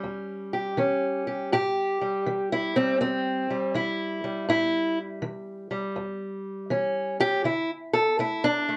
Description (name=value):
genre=acoustic country blues, solo or duo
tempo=81 BPM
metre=4/4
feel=swing 66% on 8ths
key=A mixolydian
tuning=A4 = 439 Hz
part: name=fingerpicked steel-string acoustic guitar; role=solo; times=0.0-8.8 s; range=E2 to A4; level=-27 LUFS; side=equal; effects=none
room=moderate small room ambience, RT60 0.5 s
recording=cassette tape, nothing above 10.7 kHz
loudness=-27 LUFS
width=mono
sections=0.0-8.8 A section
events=steel-string acoustic guitar solo 0.0-8.8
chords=0.0 A7; 7.4 D5